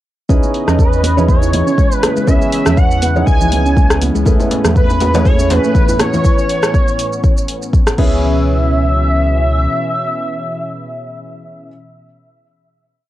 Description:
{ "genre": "afro house", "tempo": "121 BPM", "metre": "4/4", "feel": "swing 55% on 16ths", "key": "C# minor", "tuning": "A4 = 440 Hz", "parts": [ { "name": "warm analog pad", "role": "sustained chords", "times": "0.3-11.7 s", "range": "A2 to E5", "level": "-24 LUFS", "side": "left 1 dB", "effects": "chorus, sidechain pumping, cassette tape" }, { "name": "handpan", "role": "arpeggios", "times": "0.3-8.4 s", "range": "E3 to B4", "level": "-20 LUFS", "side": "right 4 dB", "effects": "sidechain pumping, cassette tape, tape echo" }, { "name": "felt-muted upright piano", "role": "stabs", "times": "0.3-11.7 s", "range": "B3 to C#5", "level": "-23 LUFS", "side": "left 4 dB", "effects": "sidechain pumping, cassette tape, tape echo" }, { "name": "warm sub bass", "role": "bass", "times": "0.3-9.7 s", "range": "C#2 to E2", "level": "-16 LUFS", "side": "equal", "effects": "sidechain pumping" }, { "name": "deep house drum kit", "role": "drums", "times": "0.3-8.1 s", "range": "crash cymbal, hi-hat, rim click, shaker", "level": "-20 LUFS", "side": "equal", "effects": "cassette tape" }, { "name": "electronic kick drum", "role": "drums", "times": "0.3-8.1 s", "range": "none", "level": "-13 LUFS", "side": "equal", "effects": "cassette tape" }, { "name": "congas", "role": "percussion", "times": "0.4-6.2 s", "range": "none", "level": "-21 LUFS", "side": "right 2 dB", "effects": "none" }, { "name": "expressive synth lead", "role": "melody", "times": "0.8-11.7 s", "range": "B4 to G#5", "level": "-19 LUFS", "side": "equal", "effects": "ensemble chorus, tape echo" }, { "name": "djembe", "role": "percussion", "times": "4.3-6.2 s", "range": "none", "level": "-24 LUFS", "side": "left 3 dB", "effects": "none" } ], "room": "light reverb", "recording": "home recording on cassette", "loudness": "-11 LUFS", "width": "side -14 dB against mid", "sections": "0.3-8.2 drop; 8.2-12.2 final hit", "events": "drop 0.3-8.2", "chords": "0.3 C#m9; 4.3 Amaj9/C#; 8.0 C#m7", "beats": "| 0.30 0.79 1.29 1.78 | 2.28 2.78 3.27 3.77 | 4.26 4.76 5.25 5.75 | 6.25 6.74 7.24 7.74 | 8.23 8.73 9.22 9.72 | 10.21 10.71 11.21" }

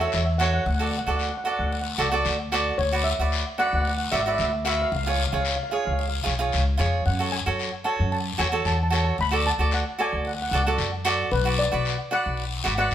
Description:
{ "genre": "calypso", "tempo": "113 BPM", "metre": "4/4", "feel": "straight", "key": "F# minor", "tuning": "A4 = 440 Hz", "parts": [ { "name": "steel pan", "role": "melody", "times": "0.0-12.9 s", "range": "B4 to B5", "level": "-28 LUFS", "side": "equal", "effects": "none" }, { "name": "cavaquinho", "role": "accompaniment", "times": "0.0-12.9 s", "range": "E#4 to E5", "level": "-26 LUFS", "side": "right 3 dB", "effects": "none" }, { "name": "upright bass", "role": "bass", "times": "0.0-12.9 s", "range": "G#1 to F#2", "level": "-26 LUFS", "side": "left 1 dB", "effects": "none" }, { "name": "guiro", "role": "percussion", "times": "0.1-12.9 s", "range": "none", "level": "-32 LUFS", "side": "left 7 dB", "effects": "none" } ], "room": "moderate large studio reverb, RT60 1.0 s", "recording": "band playing live in one room", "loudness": "-22 LUFS", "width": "side -10 dB against mid", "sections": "0.0-12.9 A section", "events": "none", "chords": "0.0 F#m; 0.7 D; 2.8 Bm/D; 4.9 C#; 7.1 F#madd9; 9.2 D; 11.3 Bm", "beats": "0.13 | 0.66 1.20 1.73 2.26 | 2.79 3.33 3.86 4.39 | 4.92 5.46 5.99 6.52 | 7.06 7.59 8.12 8.66 | 9.19 9.72 10.25 10.79 | 11.32 11.85 12.38 12.91" }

